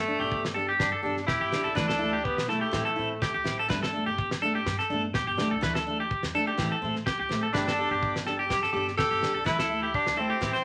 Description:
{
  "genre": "highlife guitar band",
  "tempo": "124 BPM",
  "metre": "4/4",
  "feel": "swing 53% on 16ths",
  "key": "G major",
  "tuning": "A4 = 440 Hz",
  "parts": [
    { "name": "bright tenor saxophone", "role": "melody", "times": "0.0-3.4, 7.5-10.6 s", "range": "A3 to A4", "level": "-32 LUFS", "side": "equal", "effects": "none" },
    { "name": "electric guitar at the edge of break-up", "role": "arpeggios", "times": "0.0-10.6 s", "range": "G4 to C5", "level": "-31 LUFS", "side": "equal", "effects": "none" },
    { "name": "upright bass", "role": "bass", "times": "0.0-10.5 s", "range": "E1 to A2", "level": "-42 LUFS", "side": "equal", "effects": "none" },
    { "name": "picked steel-string acoustic guitar", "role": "accompaniment", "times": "0.1-10.6 s", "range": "E3 to G4", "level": "-35 LUFS", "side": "equal", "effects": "none" },
    { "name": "damped 70s drum kit", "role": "drums", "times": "0.3-10.6 s", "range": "kick drum, snare drum", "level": "-34 LUFS", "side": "equal", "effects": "none" }
  ],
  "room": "wet studio ambience, RT60 0.4 s",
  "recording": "vinyl crackle",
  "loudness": "-28 LUFS",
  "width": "mono",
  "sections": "0.0-10.6 A section",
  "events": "none",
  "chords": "0.0 Gsus2; 1.8 Dsus2; 2.7 Am; 3.7 Gsus2; 5.6 Dsus2; 6.6 Am; 7.5 Gsus2; 9.5 Dsus2"
}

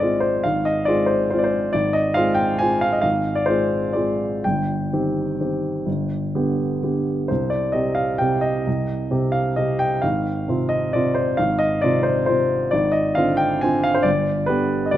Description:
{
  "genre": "classical, piano waltz",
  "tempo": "116-143 BPM",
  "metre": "3/4",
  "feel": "rubato",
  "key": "unclear",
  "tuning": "A4 = 440 Hz",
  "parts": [
    { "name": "warm grand piano", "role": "solo", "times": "0.0-15.0 s", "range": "G1 to Ab5", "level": "-18 LUFS", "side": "equal", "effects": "none" }
  ],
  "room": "moderate scoring stage reverb, RT60 1.9 s",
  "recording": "close, detailed microphones",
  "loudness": "-18 LUFS",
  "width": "side -12 dB against mid",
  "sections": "0.0-15.0 A section",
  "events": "none",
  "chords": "0.0 Fm/Ab; 4.4 Cm/G; 5.9 G; 7.3 Cm; 10.0 Fm/Ab; 12.7 Dm7b5/Ab; 14.1 G"
}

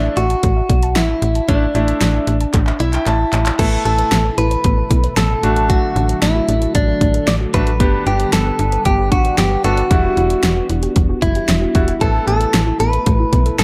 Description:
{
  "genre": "synth-pop",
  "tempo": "114 BPM",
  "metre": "4/4",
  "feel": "straight",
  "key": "unclear",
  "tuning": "A4 = 440 Hz",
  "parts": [
    { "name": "direct-recorded clean electric guitar", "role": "melody", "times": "0.0-13.6 s", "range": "D4 to D5", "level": "-21 LUFS", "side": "equal", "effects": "subtle chorus, dub echo" },
    { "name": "bright concert grand piano", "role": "accompaniment", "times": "0.0-12.6 s", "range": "G3 to A5", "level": "-25 LUFS", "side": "equal", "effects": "none" },
    { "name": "soft round pluck", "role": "arpeggios", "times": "0.0-13.6 s", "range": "G3 to A5", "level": "-30 LUFS", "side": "equal", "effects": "none" },
    { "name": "slap-like FM bass", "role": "bass", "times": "0.0-13.6 s", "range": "E1 to B1", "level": "-20 LUFS", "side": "equal", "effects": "none" },
    { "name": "pop drum kit", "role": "drums", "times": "0.2-13.6 s", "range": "crash cymbal, handclaps, hi-hat, kick drum, snare drum", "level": "-20 LUFS", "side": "equal", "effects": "none" },
    { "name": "phased analog pad", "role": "sustained chords", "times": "3.6-13.6 s", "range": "B2 to B4", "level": "-28 LUFS", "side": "equal", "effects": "phaser, chorus" }
  ],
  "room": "moderate spring reverb, RT60 1.4 s, digital ambience",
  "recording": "echo-heavy mix",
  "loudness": "-16 LUFS",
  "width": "mono",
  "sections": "0.0-3.6 A section; 3.6-13.6 B section",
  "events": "drum fill 2.5-3.6; grand piano fill 2.5-3.6",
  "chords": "0.0 Asus4; 3.6 Asus2; 5.4 D/A; 7.8 G; 9.9 Emadd9; 12.0 Asus2"
}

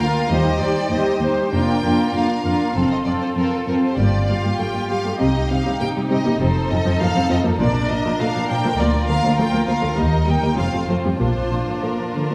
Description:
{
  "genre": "quick classical-period movement for string orchestra",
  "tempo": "99 BPM",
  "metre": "4/4",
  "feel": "straight",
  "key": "Bb major",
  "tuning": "A4 = 444 Hz",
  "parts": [
    { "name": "rich chamber violin section", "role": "melody", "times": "0.0-12.3 s", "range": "A4 to G5", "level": "-28 LUFS", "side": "equal", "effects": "none" },
    { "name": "rich studio violin section", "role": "second line", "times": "0.0-12.3 s", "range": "C4 to C5", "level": "-27 LUFS", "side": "equal", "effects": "none" },
    { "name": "warm chamber viola section", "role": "accompaniment", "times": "0.0-12.3 s", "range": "F3 to F4", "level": "-25 LUFS", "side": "equal", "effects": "none" },
    { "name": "dark chamber cello section", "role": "bass", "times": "0.0-12.2 s", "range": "D2 to D3", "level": "-26 LUFS", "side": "equal", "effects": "none" },
    { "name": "clear chamber double bass section", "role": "bass", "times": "0.3-11.4 s", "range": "F1 to Eb2", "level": "-26 LUFS", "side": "equal", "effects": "none" }
  ],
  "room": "wet scoring stage reverb, RT60 1.7 s",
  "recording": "heard from further back in the room",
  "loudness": "-20 LUFS",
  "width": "mono",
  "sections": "0.0-12.3 A section",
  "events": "none",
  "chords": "0.3 Cm/Eb; 1.5 Bb/F; 2.8 F; 4.0 Gm7; 5.2 Cm; 6.4 F7; 7.6 Bb; 8.8 Bb/D; 10.0 Eb; 10.6 F; 11.2 Bb"
}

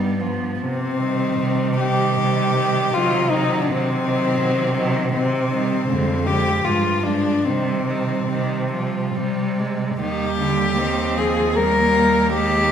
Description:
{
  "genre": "classical, lyrical piece for cello ensemble",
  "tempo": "69-84 BPM",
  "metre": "3/4",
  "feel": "rubato",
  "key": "C minor",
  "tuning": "A4 = 440 Hz",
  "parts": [
    { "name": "rich cello", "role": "second line", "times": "0.0-12.7 s", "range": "Gb3 to C4", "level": "-26 LUFS", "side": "right 6 dB", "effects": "none" },
    { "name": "rich cello", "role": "accompaniment", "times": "0.0-12.7 s", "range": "D3 to Ab3", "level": "-26 LUFS", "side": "left 1 dB", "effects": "none" },
    { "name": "clear cello", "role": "bass", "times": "0.0-12.7 s", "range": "Eb2 to C3", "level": "-24 LUFS", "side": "right 1 dB", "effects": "none" },
    { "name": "warm cello", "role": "melody", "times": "0.6-12.7 s", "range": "C4 to Bb4", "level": "-21 LUFS", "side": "left 2 dB", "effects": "none" }
  ],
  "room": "wet recital hall reverb, RT60 1.4 s",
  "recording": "recorded in a church or concert hall",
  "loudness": "-18 LUFS",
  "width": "side -8 dB against mid",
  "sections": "0.0-10.0 A section; 10.0-12.7 B section",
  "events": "none",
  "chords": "0.0 G; 0.6 Cm; 5.9 Ddim/F; 6.6 G5; 7.5 Cm; 10.0 Eb"
}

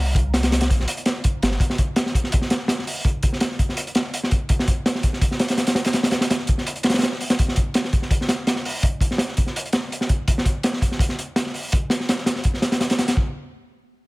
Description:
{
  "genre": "drum and bass, jungle",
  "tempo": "166 BPM",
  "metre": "4/4",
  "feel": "straight",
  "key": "unclear",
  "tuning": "A4 = 441 Hz",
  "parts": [
    { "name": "soft dub sub bass", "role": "bass", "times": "0.0-1.6 s", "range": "G1 to C2", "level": "-21 LUFS", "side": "equal", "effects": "none" },
    { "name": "crunchy breakbeat drum kit", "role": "drums", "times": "0.1-13.2 s", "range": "hi-hat, kick drum, snare drum", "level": "-19 LUFS", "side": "equal", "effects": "none" }
  ],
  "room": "little or no reverb",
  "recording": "none",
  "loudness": "-19 LUFS",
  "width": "side -22 dB against mid",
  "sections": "0.0-13.2 A section",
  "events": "none",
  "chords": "none"
}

